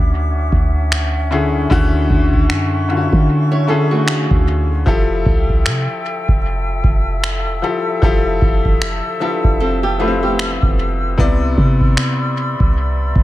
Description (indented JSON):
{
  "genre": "contemporary R&B",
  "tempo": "76 BPM",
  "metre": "4/4",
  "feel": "swing 58% on 16ths",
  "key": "unclear",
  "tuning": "A4 = 444 Hz",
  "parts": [
    { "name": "clear baby grand piano", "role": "accompaniment", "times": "0.0-13.2 s", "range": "C3 to D5", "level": "-20 LUFS", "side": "left 4 dB", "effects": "none" },
    { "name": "small flute group", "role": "sustained chords", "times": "0.0-13.2 s", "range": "C#4 to E6", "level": "-24 LUFS", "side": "left 1 dB", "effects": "sidechain pumping" },
    { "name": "clean 808-style bass", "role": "bass", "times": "0.0-13.2 s", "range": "E1 to D3", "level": "-18 LUFS", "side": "equal", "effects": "none" },
    { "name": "booming analog drum machine", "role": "drums", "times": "0.5-13.2 s", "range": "finger snaps, kick drum", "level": "-17 LUFS", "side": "equal", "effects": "vintage 12-bit sampler grit" },
    { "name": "flamenco guitar", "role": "arpeggios", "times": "3.5-11.1 s", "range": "A3 to C#5", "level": "-23 LUFS", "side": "right 4 dB", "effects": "dub echo" }
  ],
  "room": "small room ambience",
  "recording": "echo-heavy mix",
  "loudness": "-14 LUFS",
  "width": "side -16 dB against mid",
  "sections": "0.0-13.2 A section",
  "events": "break 0.0-4.9",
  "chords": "0.0 Dmaj9; 4.9 Fmaj9; 11.2 Cmaj9"
}